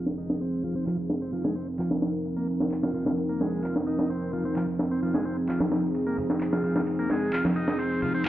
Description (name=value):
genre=breakbeat, breaks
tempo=130 BPM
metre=4/4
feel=straight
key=F minor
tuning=A4 = 440 Hz
part: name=dark analog pad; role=sustained chords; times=0.0-8.3 s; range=F3 to Bb4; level=-27 LUFS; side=equal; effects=chorus
part: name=overdriven combo organ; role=riff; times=0.0-8.3 s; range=F3 to F4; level=-32 LUFS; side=equal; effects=tube saturation, vintage 12-bit sampler grit, low-pass filter, tape echo
part: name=breakbeat sampler-style drum kit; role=drums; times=0.1-8.3 s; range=ride cymbal, snare drum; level=-30 LUFS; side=equal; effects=low-pass filter on cymbals, small room ambience, low-pass filter on kick, low-pass filter on snare
part: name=electronic handclaps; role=drums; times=0.9-8.3 s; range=none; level=-38 LUFS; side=equal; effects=small room ambience
part: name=congas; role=percussion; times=5.6-8.1 s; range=none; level=-32 LUFS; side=right 1 dB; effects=none
room=light reverb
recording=dry, gritty hardware recording, transformer saturation, low-pass filter, faint mains hum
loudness=-25 LUFS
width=side -13 dB against mid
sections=0.0-8.3 A section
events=filter sweep on transistor combo organ 0.0-8.3; filter sweep 0.0-8.3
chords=0.0 Fm7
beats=0.41 0.87 | 1.33 1.79 2.25 2.71 | 3.18 3.64 4.10 4.56 | 5.02 5.48 5.95 6.41 | 6.87 7.33 7.79 8.25